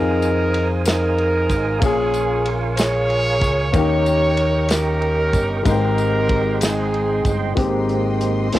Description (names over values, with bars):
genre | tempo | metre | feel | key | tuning
slow gospel | 63 BPM (dotted quarters) | 6/8 | straight | Ab major | A4 = 440 Hz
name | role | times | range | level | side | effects
warm horn section | melody | 0.0-7.5 s | C4 to Db5 | -20 LUFS | right 2 dB | tape echo
warm grand piano | accompaniment | 0.0-8.6 s | Ab2 to G5 | -23 LUFS | left 5 dB | cassette tape
tonewheel organ | sustained chords | 0.0-8.6 s | Gb3 to Eb6 | -27 LUFS | right 6 dB | slow rotary speaker, overdrive, cassette tape
fingered electric bass | bass | 0.0-8.6 s | G1 to F2 | -23 LUFS | equal | none
warm soul drum kit | drums | 0.2-8.6 s | hi-hat, kick drum, ride cymbal, snare drum | -22 LUFS | equal | cassette tape
tambourine | percussion | 0.2-7.6 s | none | -34 LUFS | left 7 dB | none
clear studio string section | sustained chords | 7.6-8.6 s | Eb5 to C6 | -32 LUFS | left 1 dB | cassette tape
room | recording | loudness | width
light reverb, small room ambience | home recording on cassette | -16 LUFS | side -14 dB against mid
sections
0.0-7.6 A section; 7.6-8.6 B section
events
tonewheel organ solo 7.6-8.6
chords
0.0 Fm7; 1.8 Bbm7; 3.7 Eb7; 5.7 Abmaj7